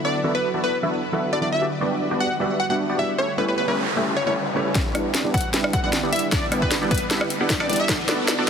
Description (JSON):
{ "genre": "future bass", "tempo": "153 BPM", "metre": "4/4", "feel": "half-time", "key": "unclear", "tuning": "A4 = 443 Hz", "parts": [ { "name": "plucky unison lead", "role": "melody", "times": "0.0-7.9 s", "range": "B4 to F#5", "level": "-25 LUFS", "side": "left 1 dB", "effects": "sidechain pumping, ping-pong delay" }, { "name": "ethereal airy pad", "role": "sustained chords", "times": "0.0-8.5 s", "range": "C#3 to B4", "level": "-33 LUFS", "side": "equal", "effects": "ensemble chorus, built-in reverb, sidechain pumping" }, { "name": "supersaw stab", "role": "riff", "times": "0.0-8.5 s", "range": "A3 to F#5", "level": "-25 LUFS", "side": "equal", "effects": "sidechain pumping, low-pass filter" }, { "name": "felt-muted upright piano", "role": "accompaniment", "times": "0.2-8.5 s", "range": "F#3 to E5", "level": "-29 LUFS", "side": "right 2 dB", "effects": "sidechain pumping, ping-pong delay" }, { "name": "noise sweep and riser", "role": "sound effects", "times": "3.3-8.5 s", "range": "none", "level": "-31 LUFS", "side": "left 2 dB", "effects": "none" }, { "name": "electronic kick drum", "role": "drums", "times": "4.8-8.0 s", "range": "none", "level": "-25 LUFS", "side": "equal", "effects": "overdrive" }, { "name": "trap drum kit", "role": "drums", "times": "4.8-8.4 s", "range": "hi-hat, rim click, snare drum", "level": "-24 LUFS", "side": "left 1 dB", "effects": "none" } ], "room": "moderate huge ambient reverb, RT60 7.9 s", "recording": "heavily compressed radio sound, multiband compression, high-pass filter", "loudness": "-20 LUFS", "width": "side -7 dB against mid", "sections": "0.0-4.8 A section; 4.8-8.5 B section", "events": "noise sweep 3.3-4.8; build-up 4.8-8.5; drum fill 4.8-8.5; filter sweep on supersaw synth 4.8-8.5", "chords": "0.0 D69; 1.6 Gmaj7; 3.2 A7; 4.8 Em7; 7.9 Bm7" }